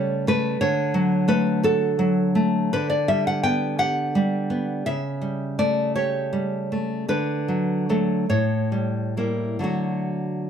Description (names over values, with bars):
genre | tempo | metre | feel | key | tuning
romantic piece for solo classical guitar | 40-62 BPM (dotted quarters) | 6/8 | rubato | D major | A4 = 440 Hz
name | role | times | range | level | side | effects
nylon-string guitar | solo | 0.0-10.5 s | A2 to G5 | -21 LUFS | equal | none
room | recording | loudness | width
light reverb | close, detailed microphones | -20 LUFS | side -8 dB against mid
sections
0.0-10.5 A section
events
none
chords
0.0 A7/C#; 0.6 D; 2.7 G/D; 4.9 A7/C#; 7.1 D; 8.3 A7b9; 9.6 D